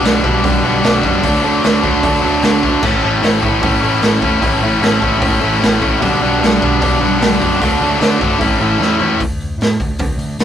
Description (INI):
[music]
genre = punk rock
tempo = 151 BPM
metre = 4/4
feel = straight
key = unclear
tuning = A4 = 436 Hz
[part]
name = distorted electric guitar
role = riff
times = 0.0-9.2 s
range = G2 to D4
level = -18 LUFS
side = right 4 dB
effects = distortion
[part]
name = tight distorted guitar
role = riff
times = 0.0-9.2 s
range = A2 to E4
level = -15 LUFS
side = left 3 dB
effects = distortion
[part]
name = overdriven picked electric bass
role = bass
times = 0.0-10.4 s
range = G1 to A2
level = -22 LUFS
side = equal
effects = none
[part]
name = raw garage drum kit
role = drums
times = 0.0-10.4 s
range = crash cymbal, hi-hat, kick drum, snare drum, toms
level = -17 LUFS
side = right 1 dB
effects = none
[sound]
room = light reverb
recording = rough rehearsal-room recording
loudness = -12 LUFS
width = side -9 dB against mid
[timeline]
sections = 0.0-9.2 A section; 9.2-10.4 B section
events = drum fill 8.8-9.2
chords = 0.0 G/B; 1.2 D; 2.8 A; 6.0 G/B; 7.6 D; 8.4 A; 9.2 D5